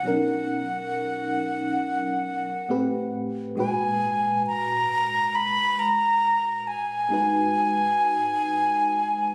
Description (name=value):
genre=R&B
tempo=68 BPM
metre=4/4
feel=straight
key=unclear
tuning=A4 = 440 Hz
part: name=breathy concert flute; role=melody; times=0.0-9.3 s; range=F#5 to B5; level=-25 LUFS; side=equal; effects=delay
part: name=FM electric piano with tremolo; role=accompaniment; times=0.0-9.3 s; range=G#2 to B4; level=-31 LUFS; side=equal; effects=phaser
room=moderate plate reverb, RT60 2.9 s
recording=recorded on a phone in the room, club reverb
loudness=-24 LUFS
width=mono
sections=0.0-9.3 A section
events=none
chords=0.1 Bmaj9; 2.7 Am9; 3.6 G#m9; 7.1 G#m7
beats=| 0.05 0.93 1.82 2.70 | 3.58 4.46 5.35 6.23 | 7.11 7.99 8.88